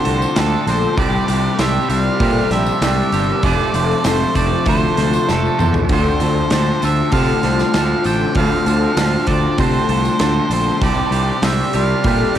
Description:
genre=rock, shoegaze and dream pop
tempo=98 BPM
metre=4/4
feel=straight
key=D minor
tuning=A4 = 440 Hz
part: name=octave-fuzz lead guitar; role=melody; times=0.0-12.4 s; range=A4 to G5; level=-22 LUFS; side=equal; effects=distortion, cassette tape, tape echo
part: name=warbly tape-like pad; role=sustained chords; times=0.0-12.4 s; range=F4 to D6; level=-25 LUFS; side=equal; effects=chorus, built-in reverb, phaser, cassette tape
part: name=fingerpicked twelve-string acoustic guitar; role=arpeggios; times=0.0-12.4 s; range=F4 to Bb4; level=-27 LUFS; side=left 9 dB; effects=analog chorus, cassette tape, tape echo
part: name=thick fuzz guitar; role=riff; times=0.0-12.4 s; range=F2 to D4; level=-22 LUFS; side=left 8 dB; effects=distortion, lush chorus, cassette tape
part: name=twangy electric guitar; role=riff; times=0.0-12.4 s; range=C3 to C5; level=-22 LUFS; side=right 10 dB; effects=reverse reverb, cassette tape
part: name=fuzz fingered electric bass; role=bass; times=0.1-12.4 s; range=F1 to C3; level=-19 LUFS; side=equal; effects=overdrive, tube saturation
part: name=big rock drum kit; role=drums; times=0.1-12.4 s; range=hi-hat, kick drum, snare drum, toms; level=-22 LUFS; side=equal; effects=cassette tape
part: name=tambourine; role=percussion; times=0.2-11.9 s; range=none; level=-36 LUFS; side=left 11 dB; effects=none
room=small room ambience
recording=home recording on cassette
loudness=-14 LUFS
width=side -10 dB against mid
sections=0.0-12.4 A section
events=drum fill 5.3-5.9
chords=0.0 Dm7; 1.0 Csus2; 3.4 F6; 5.9 Dm7; 10.8 Csus2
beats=0.37 | 0.98 1.59 2.21 2.82 | 3.44 4.05 4.67 5.28 | 5.90 6.51 7.13 7.74 | 8.36 8.97 9.59 10.20 | 10.82 11.43 12.05

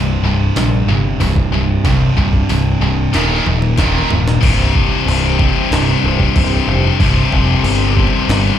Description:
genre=heavy metal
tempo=93 BPM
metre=4/4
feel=straight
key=C minor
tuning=A4 = 440 Hz
part: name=distorted electric guitar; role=riff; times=0.0-8.6 s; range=C2 to Eb3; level=-19 LUFS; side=right 1 dB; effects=overdrive, slapback echo
part: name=heavy high-gain guitar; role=riff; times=0.0-8.6 s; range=C2 to Eb3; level=-18 LUFS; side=left 10 dB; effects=distortion, slapback echo
part: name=scooped high-gain guitar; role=riff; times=0.0-4.4 s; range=C2 to Eb3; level=-20 LUFS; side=right 7 dB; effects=distortion
part: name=growling picked electric bass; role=bass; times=0.0-8.5 s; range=C1 to C2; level=-16 LUFS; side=equal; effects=overdrive
part: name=jungle sampler-style drum kit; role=drums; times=0.6-8.4 s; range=crash cymbal, hi-hat, kick drum, snare drum, toms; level=-18 LUFS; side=equal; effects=overdrive
part: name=warm analog pad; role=sustained chords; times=4.4-8.6 s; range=C4 to C5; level=-26 LUFS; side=equal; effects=chorus
room=little or no reverb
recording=live gig heard through the venue's PA, club reverb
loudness=-12 LUFS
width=side -10 dB against mid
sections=0.0-4.4 A section; 4.4-8.6 B section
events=drum fill 3.1-4.4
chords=0.0 C5; 3.1 Eb5; 4.4 C5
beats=0.57 1.21 | 1.86 2.50 3.15 3.79 | 4.43 5.08 5.72 6.36 | 7.00 7.65 8.29

